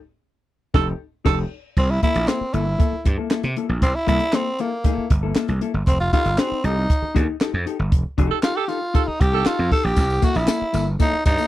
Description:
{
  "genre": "funk",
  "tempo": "117 BPM",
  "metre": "4/4",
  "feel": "straight",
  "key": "C mixolydian",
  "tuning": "A4 = 440 Hz",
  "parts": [
    { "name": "breathy tenor saxophone", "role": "second line", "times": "0.7-1.4, 8.3-9.7 s", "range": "A4", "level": "-24 LUFS", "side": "right 16 dB", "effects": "none" },
    { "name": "mellow electric guitar", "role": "accompaniment", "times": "0.7-11.5 s", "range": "Bb3 to A4", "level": "-27 LUFS", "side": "left 8 dB", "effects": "warbly pitch drift" },
    { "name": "gritty slap bass", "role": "bass", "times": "0.7-11.4 s", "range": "F1 to C3", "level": "-22 LUFS", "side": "equal", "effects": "overdrive" },
    { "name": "compact cocktail drum kit", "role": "drums", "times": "0.7-11.4 s", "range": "crash cymbal, handclaps, hi-hat, kick drum, snare drum", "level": "-20 LUFS", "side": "equal", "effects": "none" },
    { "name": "growling tenor saxophone", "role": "melody", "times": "1.8-11.5 s", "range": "Bb3 to A4", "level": "-23 LUFS", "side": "right 1 dB", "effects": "none" },
    { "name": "tambourine", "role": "percussion", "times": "10.0-11.5 s", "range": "none", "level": "-38 LUFS", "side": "left 4 dB", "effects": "none" }
  ],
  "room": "little or no reverb",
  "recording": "dry, close 1970s-style studio recording",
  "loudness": "-18 LUFS",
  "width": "side -15 dB against mid",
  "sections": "0.0-1.8 A section; 1.8-11.5 B section",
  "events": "band accent 0.0-1.8, 7.9-10.0; tenor saxophone solo 1.8-11.5",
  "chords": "0.0 F9; 1.8 C6; 5.9 F9; 10.0 C6",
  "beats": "0.23 0.74 1.26 | 1.77 2.28 2.80 3.31 | 3.82 4.33 4.85 5.36 | 5.87 6.39 6.90 7.41 | 7.92 8.44 8.95 9.46 | 9.97 10.49 11.00"
}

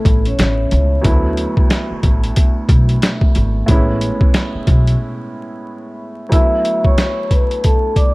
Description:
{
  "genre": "hip hop, boom-bap hip-hop",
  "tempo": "91 BPM",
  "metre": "4/4",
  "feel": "swing 60% on 16ths",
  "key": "unclear",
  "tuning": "A4 = 439 Hz",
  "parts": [
    { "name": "vibraphone with soft mallets", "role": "melody", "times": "0.0-1.0, 6.3-8.1 s", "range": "A3 to E6", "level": "-19 LUFS", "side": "left 1 dB", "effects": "high-pass filter, low-pass filter, analog delay" },
    { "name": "dark grand piano", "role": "accompaniment", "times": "0.0-8.1 s", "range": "D2 to E4", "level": "-22 LUFS", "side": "right 1 dB", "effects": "high-pass filter, low-pass filter" },
    { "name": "upright bass", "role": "bass", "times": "0.1-4.9 s", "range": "G#1 to D2", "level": "-16 LUFS", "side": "equal", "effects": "none" },
    { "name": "boom bap sampler-style drum kit", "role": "drums", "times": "0.1-8.1 s", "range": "hi-hat, kick drum, snare drum", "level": "-14 LUFS", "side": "equal", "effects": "none" }
  ],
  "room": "little or no reverb",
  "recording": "vinyl crackle",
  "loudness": "-12 LUFS",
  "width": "side -23 dB against mid",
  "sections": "0.0-6.3 A section; 6.3-8.1 B section",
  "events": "break 5.0-6.3",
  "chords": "0.0 A; 1.0 D69; 3.7 Amaj7; 6.3 D69",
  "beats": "0.39 | 1.04 1.70 2.36 3.02 | 3.68 4.34 5.00 5.66 | 6.32 6.98 7.64"
}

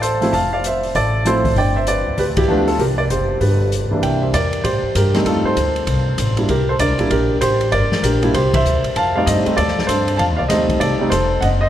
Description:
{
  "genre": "jazz piano trio",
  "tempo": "195 BPM",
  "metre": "4/4",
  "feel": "swing 63% on 8ths",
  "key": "unclear",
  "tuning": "A4 = 440 Hz",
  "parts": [
    { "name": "warm grand piano", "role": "melody", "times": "0.0-11.7 s", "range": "C2 to A5", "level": "-17 LUFS", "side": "right 1 dB", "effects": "none" },
    { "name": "upright bass", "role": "bass", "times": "0.0-11.7 s", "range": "F1 to A2", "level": "-20 LUFS", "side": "equal", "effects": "none" },
    { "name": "open jazz drum kit", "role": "drums", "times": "0.0-11.5 s", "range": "hi-hat, kick drum, ride cymbal, snare drum", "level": "-25 LUFS", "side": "left 1 dB", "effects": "none" }
  ],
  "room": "wet cathedral reverb, RT60 5.1 s",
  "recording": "recorded in a church or concert hall",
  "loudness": "-15 LUFS",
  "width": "side -11 dB against mid",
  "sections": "0.0-4.0 A section; 4.0-11.7 A section",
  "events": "band accent 2.3, 8.5",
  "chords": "0.0 Dm7; 1.6 G9; 2.8 C5; 3.4 G; 4.0 C9; 5.3 F9; 6.5 C7sus2; 7.7 Gm; 8.3 Cadd9; 9.0 F9",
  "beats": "0.02 | 0.33 0.64 0.95 1.25 | 1.56 1.87 2.18 2.49 | 2.79 3.10 3.41 3.72 | 4.03 4.33 4.64 4.95 | 5.26 5.57 5.87 6.18 | 6.49 6.80 7.11 7.41 | 7.72 8.03 8.34 8.65 | 8.96 9.26 9.57 9.88 | 10.19 10.49 10.80 11.11 | 11.42"
}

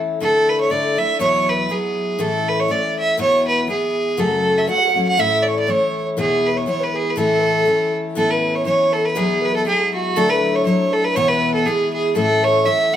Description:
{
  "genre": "celtic folk",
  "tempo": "120 BPM",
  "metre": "2/4",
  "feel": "swing 55% on 8ths",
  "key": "A major",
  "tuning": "A4 = 436 Hz",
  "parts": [
    { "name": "picked steel-string acoustic guitar", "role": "accompaniment", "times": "0.0-13.0 s", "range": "E2 to F#4", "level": "-21 LUFS", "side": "left 3 dB", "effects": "none" },
    { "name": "clear fiddle", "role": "melody", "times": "0.2-13.0 s", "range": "F#4 to F#5", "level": "-18 LUFS", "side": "right 2 dB", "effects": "none" },
    { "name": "breathy round clay ocarina", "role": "second line", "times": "4.2-13.0 s", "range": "F#4 to F#5", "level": "-24 LUFS", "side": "left 2 dB", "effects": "none" }
  ],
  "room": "wet studio reverb, RT60 0.8 s",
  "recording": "band playing live in one room",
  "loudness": "-16 LUFS",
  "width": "side -10 dB against mid",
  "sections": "0.2-8.2 A section; 8.2-13.0 B section",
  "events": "none",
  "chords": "0.2 Dsus2; 1.2 Eadd9; 2.2 A; 3.2 E; 4.2 F#m; 5.2 A; 6.2 E; 7.2 A; 8.2 Aadd9; 9.2 Eadd9; 10.2 Dadd9; 11.2 E; 12.2 A",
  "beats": "| 0.20 0.70 | 1.20 1.69 | 2.19 2.69 | 3.18 3.68 | 4.17 4.67 | 5.17 5.67 | 6.17 6.66 | 7.16 7.66 | 8.16 8.66 | 9.16 9.66 | 10.16 10.66 | 11.16 11.66 | 12.16 12.65"
}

